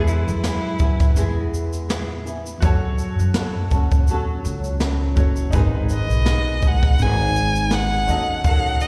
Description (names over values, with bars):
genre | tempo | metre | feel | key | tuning
acoustic pop | 82 BPM | 4/4 | swing 55% on 16ths | unclear | A4 = 440 Hz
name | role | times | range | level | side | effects
rich cello | second line | 0.0-1.5 s | E4 | -31 LUFS | equal | slapback echo
bright upright piano | accompaniment | 0.0-8.9 s | C#4 to D#5 | -37 LUFS | equal | slapback echo
flamenco guitar | accompaniment | 0.0-8.9 s | G#2 to A4 | -31 LUFS | equal | double-tracked, slapback echo
upright bass | bass | 0.0-8.8 s | F#1 to F#2 | -24 LUFS | equal | none
jazz brush drum kit | drums | 0.1-8.9 s | kick drum, shaker, snare drum | -23 LUFS | equal | none
rich violin | melody | 5.9-8.9 s | D#5 to G#5 | -25 LUFS | equal | slapback echo
room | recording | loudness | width
light reverb | live gig heard through the venue's PA, recital hall reverb | -20 LUFS | mono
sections
0.0-8.9 A section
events
none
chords
0.0 E; 2.6 F#m; 5.5 G#m; 8.1 D#m7b5